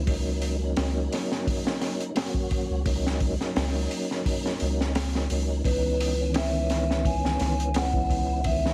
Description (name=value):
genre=trip hop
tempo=86 BPM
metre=4/4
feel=swing 54% on 16ths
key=unclear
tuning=A4 = 440 Hz
part: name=mellow tonewheel organ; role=accompaniment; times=0.0-8.7 s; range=D#3 to F#4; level=-32 LUFS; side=equal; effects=chorus vibrato, fast rotary speaker, harmonic tremolo, vintage 12-bit sampler grit, low-pass filter, tape echo
part: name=soft dub sub bass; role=bass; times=0.0-8.7 s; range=C#2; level=-30 LUFS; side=equal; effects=none
part: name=crunchy breakbeat drum kit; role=drums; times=0.1-8.7 s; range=hi-hat, kick drum, snare drum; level=-31 LUFS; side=equal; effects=none
part: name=vibraphone with soft mallets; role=melody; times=5.7-8.7 s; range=B4 to G#5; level=-31 LUFS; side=equal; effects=none
room=small room ambience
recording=vinyl crackle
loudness=-26 LUFS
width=mono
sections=0.0-8.7 A section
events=none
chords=0.1 D#m7/C#; 5.7 C#m9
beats=| 0.07 0.77 1.46 2.16 | 2.86 3.56 4.25 4.95 | 5.65 6.35 7.04 7.74 | 8.44